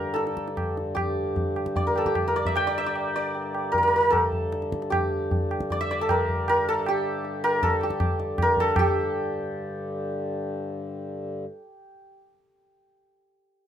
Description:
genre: indian classical, Hindustani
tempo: 154 BPM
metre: 5/4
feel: straight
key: G raga shivaranjani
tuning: A4 = 440 Hz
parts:
  - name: santur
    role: melody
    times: 0.0-12.1 s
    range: G4 to G5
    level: -25 LUFS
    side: equal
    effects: none
  - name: pedal harmonium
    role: drone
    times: 0.0-11.5 s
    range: G2 to D3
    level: -32 LUFS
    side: left 2 dB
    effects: none
  - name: tabla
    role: percussion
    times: 0.2-8.9 s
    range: none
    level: -28 LUFS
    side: right 1 dB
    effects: none
room: moderate studio ambience, RT60 0.5 s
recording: minimal, uncompressed stereo recording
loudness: -23 LUFS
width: side -9 dB against mid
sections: 0.0-8.8 A section; 8.8-10.7 B section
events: speeding up 0.0-10.7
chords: none

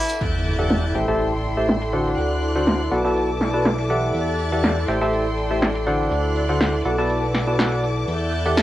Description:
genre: piano house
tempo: 122 BPM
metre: 4/4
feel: swing 53% on 16ths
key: E minor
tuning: A4 = 436 Hz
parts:
  - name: bright studio string section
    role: sustained chords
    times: 0.0-8.6 s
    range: A4 to A6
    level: -30 LUFS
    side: left 1 dB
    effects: vintage 12-bit sampler grit, cassette tape
  - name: airy breathy pad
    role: texture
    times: 0.0-8.6 s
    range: E4 to G5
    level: -26 LUFS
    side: equal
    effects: chorus, cassette tape
  - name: dusty soul sampler-style drum kit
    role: drums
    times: 0.1-8.6 s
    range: hi-hat, snare drum, tambourine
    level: -41 LUFS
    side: equal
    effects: none
  - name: punchy analog drum machine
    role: drums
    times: 0.1-8.6 s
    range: crash cymbal, hi-hat, snare drum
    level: -20 LUFS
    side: equal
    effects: low-pass filter on hats, low-pass filter on snare, low-pass filter on cymbals, low-pass filter on room
  - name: fat analog bass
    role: bass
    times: 0.2-8.6 s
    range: A1 to E2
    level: -25 LUFS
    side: equal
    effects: none
  - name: impact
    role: sound effects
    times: 0.2-2.2 s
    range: none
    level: -30 LUFS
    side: equal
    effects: none
  - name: percussive organ stab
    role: riff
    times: 0.6-8.6 s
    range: D3 to A5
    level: -23 LUFS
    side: equal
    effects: lush chorus, cassette tape, analog delay
room: wet booth ambience, RT60 0.2 s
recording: home recording on cassette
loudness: -19 LUFS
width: side -14 dB against mid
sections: 0.2-8.6 A section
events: impact 0.2-2.2; filter sweep on drum 0.2-8.6; filter sweep on synth stab 0.2-8.6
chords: 0.2 Em11; 0.9 Am7; 2.2 D7; 2.9 Bm7; 4.1 Em11; 4.9 Am7; 6.1 D7; 6.8 Bm7; 8.1 Em11

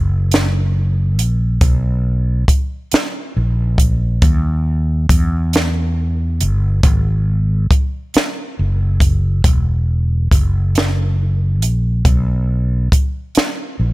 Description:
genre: slow six-eight R&B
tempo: 46 BPM (dotted quarters)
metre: 6/8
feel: straight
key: unclear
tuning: A4 = 440 Hz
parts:
  - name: fretless electric bass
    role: bass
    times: 0.0-13.9 s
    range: E1 to E2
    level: -15 LUFS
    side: equal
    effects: none
  - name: compact cocktail drum kit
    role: drums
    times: 0.3-13.6 s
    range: hi-hat, kick drum, snare drum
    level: -15 LUFS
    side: equal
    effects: none
room: little or no reverb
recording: none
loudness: -14 LUFS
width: side -20 dB against mid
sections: 0.0-13.9 A section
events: none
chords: none

